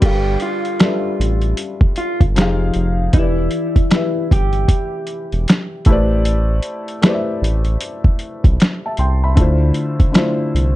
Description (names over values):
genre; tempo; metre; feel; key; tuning
lo-fi hip hop; 77 BPM; 4/4; swing 61% on 16ths; unclear; A4 = 441 Hz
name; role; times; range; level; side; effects
electric guitar through a small old amp; melody; 0.0-6.2 s; E4 to G4; -23 LUFS; equal; tape echo
felt-muted upright piano; accompaniment; 0.0-10.8 s; D3 to C6; -21 LUFS; left 2 dB; cassette tape, plate reverb
round analog bass; bass; 0.0-10.8 s; E1 to D2; -17 LUFS; equal; none
lo-fi sampler-style drum kit; drums; 0.0-10.8 s; crash cymbal, finger snaps, hi-hat, kick drum, snare drum; -14 LUFS; equal; overdrive
room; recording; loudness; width
light reverb; dark, warm production; -14 LUFS; side -16 dB against mid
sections
0.0-10.8 A section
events
none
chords
0.0 G9; 2.4 Fm7; 3.1 Em7; 5.9 Am11; 9.4 Dm9